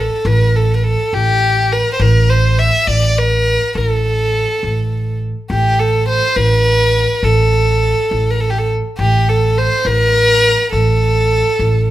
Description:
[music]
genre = Persian modal ensemble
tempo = 69 BPM (dotted quarters)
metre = 6/8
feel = straight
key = A dastgah shur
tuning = A4 = 440 Hz
[part]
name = rich violin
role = melody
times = 0.0-11.9 s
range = G4 to E5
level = -14 LUFS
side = equal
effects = none
[part]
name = upright bass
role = bass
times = 0.0-11.9 s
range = A1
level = -15 LUFS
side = right 1 dB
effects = none
[sound]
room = light reverb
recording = band playing live in one room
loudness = -12 LUFS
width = side -14 dB against mid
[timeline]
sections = 0.0-5.5 A section; 5.5-11.9 B section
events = none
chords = none

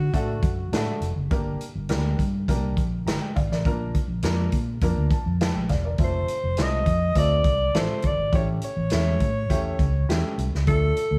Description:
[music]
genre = uptempo 1960s-style soul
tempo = 103 BPM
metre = 4/4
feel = straight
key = unclear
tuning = A4 = 440 Hz
[part]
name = warm alto saxophone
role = melody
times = 0.0-1.0, 6.0-11.2 s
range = F#4 to Eb5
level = -29 LUFS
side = equal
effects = none
[part]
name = vintage muted fingered electric bass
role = bass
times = 0.0-11.2 s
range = E1 to Bb2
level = -27 LUFS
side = equal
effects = none
[part]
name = dark baby grand piano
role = accompaniment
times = 0.1-11.0 s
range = A3 to Bb5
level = -34 LUFS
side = equal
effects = none
[part]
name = swinging big-band drum kit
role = drums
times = 0.1-11.1 s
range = hi-hat, kick drum, snare drum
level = -28 LUFS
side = equal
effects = none
[sound]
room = small room ambience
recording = none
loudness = -24 LUFS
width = mono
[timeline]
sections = 0.0-11.2 A section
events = grand piano fill 4.8-6.0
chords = 0.0 D; 1.3 Gm; 3.7 Bb; 6.0 F; 8.3 A7; 10.7 Dm

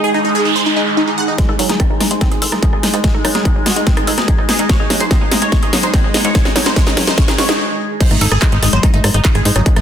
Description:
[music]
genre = psychedelic trance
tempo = 145 BPM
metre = 4/4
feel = straight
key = unclear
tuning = A4 = 439 Hz
[part]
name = supersaw stab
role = melody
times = 0.0-9.8 s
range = D#4 to F#5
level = -20 LUFS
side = right 1 dB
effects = phaser, sidechain pumping, low-pass filter, digital delay
[part]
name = overtone-sweeping drone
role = sustained chords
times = 0.0-9.8 s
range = G#3 to G#4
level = -24 LUFS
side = left 1 dB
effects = chorus, built-in reverb, sidechain pumping
[part]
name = noise sweep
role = sound effects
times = 0.1-1.4 s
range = none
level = -19 LUFS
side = right 3 dB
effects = none
[part]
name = granular cloud pad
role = texture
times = 0.0-7.6 s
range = D#4 to G#5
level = -25 LUFS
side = right 2 dB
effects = built-in reverb, sidechain pumping
[part]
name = woody wave-folded pluck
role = riff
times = 1.4-9.8 s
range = F#3 to A4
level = -22 LUFS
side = moving between left 4 dB and right 3 dB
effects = chorus, auto-pan, sidechain pumping, digital delay
[part]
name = big-room dance drum kit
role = drums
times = 1.4-9.8 s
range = crash cymbal, handclaps, hi-hat, rim click, snare drum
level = -17 LUFS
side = equal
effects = none
[part]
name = electronic kick drum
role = drums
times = 1.4-9.7 s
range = none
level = -14 LUFS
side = equal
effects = distortion
[part]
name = tight sequencer bass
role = bass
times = 1.5-9.8 s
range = F#1 to G#2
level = -20 LUFS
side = equal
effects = tube saturation, high-pass filter
[sound]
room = light reverb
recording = dense, heavily limited modern master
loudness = -12 LUFS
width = side -9 dB against mid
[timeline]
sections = 0.0-1.4 A section; 1.4-8.0 B section; 8.0-9.8 C section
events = noise sweep 0.1-1.4; build-up 1.4-8.0; drum fill 1.4-7.6; filter sweep on synth arpeggio sound 1.4-8.0; filter sweep on supersaw synth 1.4-8.0; stop 7.6-8.0; drop 8.0-9.8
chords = 0.0 G#5

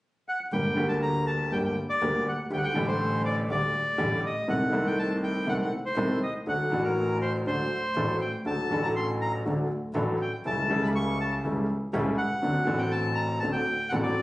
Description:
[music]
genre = tango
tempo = 121 BPM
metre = 4/4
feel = rubato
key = unclear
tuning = A4 = 440 Hz
[part]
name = bandoneon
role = melody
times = 0.3-14.2 s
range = Bb4 to C#6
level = -30 LUFS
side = equal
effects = none
[part]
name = clear concert grand piano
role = accompaniment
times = 0.5-14.1 s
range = G1 to A4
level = -27 LUFS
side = equal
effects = none
[part]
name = clear double bass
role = bass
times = 0.5-14.1 s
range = G1 to D2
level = -34 LUFS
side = equal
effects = none
[sound]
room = moderate large studio reverb, RT60 1.2 s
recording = recorded on a phone in the room, club reverb, nothing above 10.4 kHz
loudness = -25 LUFS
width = side -18 dB against mid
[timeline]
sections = 0.5-14.2 A section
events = none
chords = 0.0 N.C.; 0.5 Gm; 2.5 Dsus4; 4.5 Adim/C; 6.5 D; 10.5 A7/C#; 12.4 D7

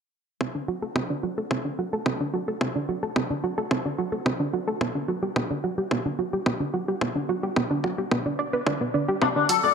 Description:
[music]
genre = nu-disco, nu disco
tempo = 109 BPM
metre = 4/4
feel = straight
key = D mixolydian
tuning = A4 = 440 Hz
[part]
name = analog pluck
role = arpeggios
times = 0.4-9.7 s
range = B3 to D5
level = -26 LUFS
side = right 2 dB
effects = chorus, sidechain pumping, ping-pong delay
[part]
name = electronic kick drum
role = drums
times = 0.4-9.3 s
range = none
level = -29 LUFS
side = left 1 dB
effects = overdrive, high-pass filter on kick, high-pass filter on room
[part]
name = electric guitar with an envelope filter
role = riff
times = 9.2-9.7 s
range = D4 to D5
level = -20 LUFS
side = left 8 dB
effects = analog chorus
[part]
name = electronic hi-hat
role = drums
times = 9.5-9.6 s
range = none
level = -27 LUFS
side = right 2 dB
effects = overdrive
[sound]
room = moderate lush hall reverb, RT60 2.6 s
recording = bright 1980s-style digital production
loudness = -24 LUFS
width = side -6 dB against mid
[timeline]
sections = 0.4-9.7 A section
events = filter sweep on synth arpeggio sound 0.4-9.7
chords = 0.4 D7; 4.8 Gmaj7; 9.2 D7

